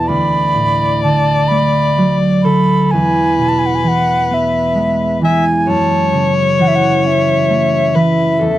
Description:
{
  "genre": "celtic folk, Celtic slow air",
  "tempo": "43 BPM (dotted quarters)",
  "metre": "6/8",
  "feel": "rubato",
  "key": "unclear",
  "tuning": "A4 = 440 Hz",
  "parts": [
    { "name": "wooden flute", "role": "melody", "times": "0.0-8.6 s", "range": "E5 to B5", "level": "-16 LUFS", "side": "right 1 dB", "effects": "none" },
    { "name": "concert harp", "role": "accompaniment", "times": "0.0-8.6 s", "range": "D2 to C#4", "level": "-14 LUFS", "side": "right 2 dB", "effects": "none" },
    { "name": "warm viola", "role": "second line", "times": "0.1-8.6 s", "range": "A4 to E5", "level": "-17 LUFS", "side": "left 5 dB", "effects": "none" }
  ],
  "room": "little or no reverb",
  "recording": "dry, close 1970s-style studio recording",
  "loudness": "-11 LUFS",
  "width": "side -14 dB against mid",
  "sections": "0.0-8.6 A section",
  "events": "none",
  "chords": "0.1 D; 2.9 E; 5.7 F#m7"
}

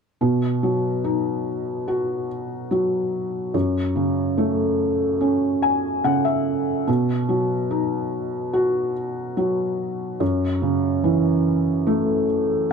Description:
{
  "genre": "pop",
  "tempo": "72 BPM",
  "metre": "4/4",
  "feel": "straight",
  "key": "B mixolydian",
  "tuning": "A4 = 440 Hz",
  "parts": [
    { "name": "felt-muted upright piano", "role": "accompaniment", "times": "0.2-12.7 s", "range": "F#2 to G#5", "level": "-20 LUFS", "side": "equal", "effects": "none" }
  ],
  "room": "light reverb",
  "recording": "none",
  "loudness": "-20 LUFS",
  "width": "side -6 dB against mid",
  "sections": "0.2-12.7 A section",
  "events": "felt piano fill 5.2-6.9, 12.3-12.7",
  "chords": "0.2 B; 3.5 F#m; 6.9 B; 10.2 F#m7"
}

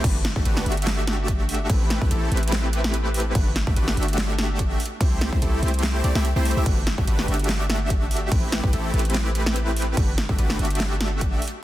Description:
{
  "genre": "future bass",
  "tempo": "145 BPM",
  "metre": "4/4",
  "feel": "swing 55% on 16ths, half-time",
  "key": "G major",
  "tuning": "A4 = 440 Hz",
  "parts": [
    { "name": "supersaw chords", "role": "riff", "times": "0.0-11.4 s", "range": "A3 to E5", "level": "-27 LUFS", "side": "equal", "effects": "sidechain pumping, digital delay" },
    { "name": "warm 808-style bass", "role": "bass", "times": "0.0-11.4 s", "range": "G1 to C2", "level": "-24 LUFS", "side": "equal", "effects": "sidechain pumping" },
    { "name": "dubstep drum kit", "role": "drums", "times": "0.0-11.6 s", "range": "crash cymbal, hi-hat, snare drum", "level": "-28 LUFS", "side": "equal", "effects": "studio reverb" },
    { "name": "electronic kick drum", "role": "drums", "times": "0.0-11.3 s", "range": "none", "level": "-23 LUFS", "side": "equal", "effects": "studio reverb" }
  ],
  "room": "little or no reverb",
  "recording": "dense, heavily limited modern master",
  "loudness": "-20 LUFS",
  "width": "side -14 dB against mid",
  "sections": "0.0-11.6 A section",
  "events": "none",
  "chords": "0.0 Gmaj9; 1.7 Am9; 3.4 Gmaj9; 4.8 C6; 6.7 Gmaj9; 8.3 Am9; 10.0 Gmaj9"
}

